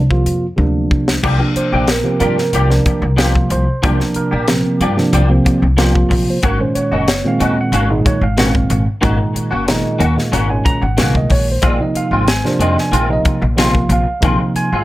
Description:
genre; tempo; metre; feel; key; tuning
electric jazz fusion; 92 BPM; 4/4; straight; C minor; A4 = 444 Hz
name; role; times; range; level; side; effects
upright bass; bass; 0.0-14.8 s; Gb1 to G2; -17 LUFS; equal; none
tine electric piano; accompaniment; 0.1-14.8 s; Bb2 to Bb5; -17 LUFS; right 2 dB; phaser
crisp fusion drum kit; drums; 0.1-14.7 s; crash cymbal, hi-hat, kick drum, snare drum, toms; -18 LUFS; left 1 dB; none
clean electric guitar; stabs; 1.2-14.8 s; Eb3 to G4; -21 LUFS; left 1 dB; ensemble chorus, tape echo
room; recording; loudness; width
light reverb; none; -12 LUFS; side -16 dB against mid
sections
0.0-1.2 A section; 1.2-14.8 B section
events
drum fill 0.6-1.2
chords
0.0 C9sus4; 6.4 Ab9sus4; 11.6 Bb9sus4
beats
0.58 | 1.24 1.89 2.54 3.19 | 3.84 4.49 5.14 5.79 | 6.44 7.09 7.74 8.39 | 9.04 9.69 10.34 10.99 | 11.64 12.29 12.94 13.58 | 14.23

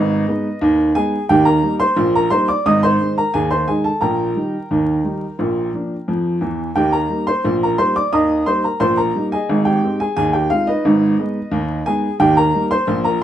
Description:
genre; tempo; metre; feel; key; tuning
ragtime piano; 88 BPM; 2/4; straight; Eb major; A4 = 437 Hz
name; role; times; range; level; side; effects
warm upright piano; solo; 0.0-13.2 s; Ab1 to Eb6; -15 LUFS; equal; none
room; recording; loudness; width
light reverb; vinyl crackle; -15 LUFS; side -11 dB against mid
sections
0.0-13.2 A section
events
none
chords
0.0 Abm; 1.3 Eb; 2.7 Ab; 4.0 Eb/Bb; 5.4 Bb; 6.8 Eb; 9.5 Ab; 10.8 Abm; 12.2 Eb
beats
0.61 | 1.29 1.97 | 2.65 3.33 | 4.02 4.70 | 5.39 6.08 | 6.76 7.44 | 8.12 8.80 | 9.48 10.16 | 10.84 11.51 | 12.19 12.87

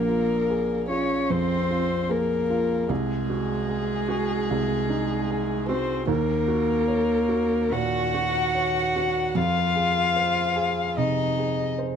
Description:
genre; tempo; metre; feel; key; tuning
neoclassical piano and strings; 75 BPM; 4/4; rubato; Eb dorian; A4 = 440 Hz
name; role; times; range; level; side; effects
dark violin; melody; 0.0-11.8 s; Ab4 to Gb5; -26 LUFS; left 7 dB; plate reverb
warm cello; second line; 0.0-11.8 s; Ab3 to Gb4; -28 LUFS; right 5 dB; none
felt-muted upright piano; accompaniment; 0.0-12.0 s; Bb1 to Db5; -26 LUFS; right 2 dB; none
room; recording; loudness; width
moderate studio reverb, RT60 0.6 s; dark, warm production; -22 LUFS; side -7 dB against mid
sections
0.0-12.0 A section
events
none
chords
0.0 Bb5; 2.9 Ab7/C; 6.1 Ebm7; 9.4 Fm7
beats
0.49 1.29 2.10 | 2.90 3.70 4.50 5.30 | 6.09 6.89 7.73 8.55 | 9.36 10.16 10.97 11.78

